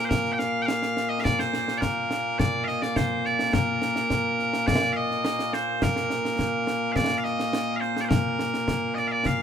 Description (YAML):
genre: scottish traditional, Scottish pipe music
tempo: 105 BPM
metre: 4/4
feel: straight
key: Bb major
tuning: A4 = 440 Hz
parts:
  - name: loud bright bagpipes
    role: melody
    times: 0.0-9.4 s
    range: Bb2 to G5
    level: -24 LUFS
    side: equal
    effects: none
  - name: concert snare drum and concert bass drum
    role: drums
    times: 0.1-9.4 s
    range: none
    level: -28 LUFS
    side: left 1 dB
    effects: none
room: light reverb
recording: minimal, uncompressed stereo recording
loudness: -23 LUFS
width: side -8 dB against mid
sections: 0.0-9.4 A section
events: none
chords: none